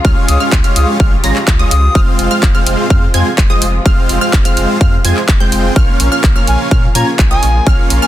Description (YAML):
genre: EDM, festival progressive house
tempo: 126 BPM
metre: 4/4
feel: straight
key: F minor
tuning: A4 = 440 Hz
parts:
  - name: muted studio string section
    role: sustained chords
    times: 0.0-8.1 s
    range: C3 to G4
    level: -23 LUFS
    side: left 1 dB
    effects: sidechain pumping
  - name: wide unison pluck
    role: arpeggios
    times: 0.0-8.1 s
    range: Eb6 to Bb6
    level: -20 LUFS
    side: right 1 dB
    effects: sidechain pumping, tape echo
  - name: dense compressed supersaw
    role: riff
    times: 0.0-8.1 s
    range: Ab3 to Bb5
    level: -17 LUFS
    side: right 1 dB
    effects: sidechain pumping, tape echo
  - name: saturated sub bass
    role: bass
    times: 0.0-8.0 s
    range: F1 to Bb2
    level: -15 LUFS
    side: equal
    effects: sidechain pumping
  - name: electronic kick drum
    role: drums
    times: 0.0-7.8 s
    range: none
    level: -11 LUFS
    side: equal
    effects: overdrive
  - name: bright reedy jazz flute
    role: melody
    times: 0.3-2.0, 6.5-8.1 s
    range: Ab5 to Eb6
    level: -20 LUFS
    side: left 2 dB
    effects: tape echo
  - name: big-room dance drum kit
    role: drums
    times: 0.3-8.0 s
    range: handclaps, hi-hat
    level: -19 LUFS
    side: equal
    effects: overdrive
room: little or no reverb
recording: dense, heavily limited modern master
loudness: -9 LUFS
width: side -13 dB against mid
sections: 0.0-8.1 A section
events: none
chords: 0.0 Db; 2.0 Fm; 5.8 Bbm